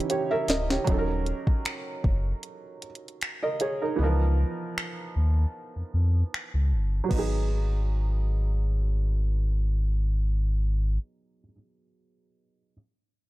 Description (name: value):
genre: contemporary R&B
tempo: 77 BPM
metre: 4/4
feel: swing 54% on 16ths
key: G# minor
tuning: A4 = 436 Hz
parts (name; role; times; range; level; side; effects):
- felt-muted upright piano; accompaniment; 0.0-12.7 s; E3 to E5; -30 LUFS; right 3 dB; low-pass filter
- smooth R&B drum kit; drums; 0.0-7.3 s; crash cymbal, finger snaps, hi-hat, kick drum, snare drum; -28 LUFS; equal; none
- mallet-like synth pluck; texture; 0.0-1.2 s; none; barely audible; none; none
- sub bass with octave; bass; 0.5-11.0 s; D1 to E#2; -24 LUFS; equal; none
room: little or no reverb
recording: dark, warm production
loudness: -24 LUFS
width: side -18 dB against mid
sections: 0.9-7.1 A section; 7.1-10.2 B section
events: drum fill 0.0-0.9; filter sweep on felt piano 0.9-7.1; kick muted 4.0-7.1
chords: 0.0 D#7b9; 0.9 D#m7; 4.0 C#13; 7.1 G#m7